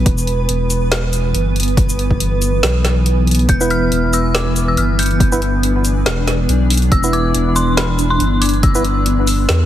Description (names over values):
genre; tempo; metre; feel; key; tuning
deep dubstep; 140 BPM; 4/4; swing 55% on 16ths, half-time; E minor; A4 = 440 Hz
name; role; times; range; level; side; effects
granular cloud pad; sustained chords; 0.0-9.7 s; E3 to B4; -20 LUFS; equal; built-in reverb
saturated sub bass; bass; 0.0-9.7 s; E1 to E2; -16 LUFS; equal; none
deep house drum kit; drums; 0.1-9.6 s; hi-hat, shaker, snare drum; -20 LUFS; equal; none
electronic kick drum; drums; 0.1-8.7 s; none; -15 LUFS; equal; none
dark detuned synth bell; melody; 3.5-9.7 s; B5 to G6; -22 LUFS; left 1 dB; chorus, dub echo
percussive organ stab; stabs; 3.6-8.8 s; B3 to B4; -22 LUFS; right 2 dB; chorus, dub echo
room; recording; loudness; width
light reverb; heavily compressed radio sound, multiband compression; -13 LUFS; side -12 dB against mid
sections
0.0-9.7 A section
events
none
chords
0.0 E5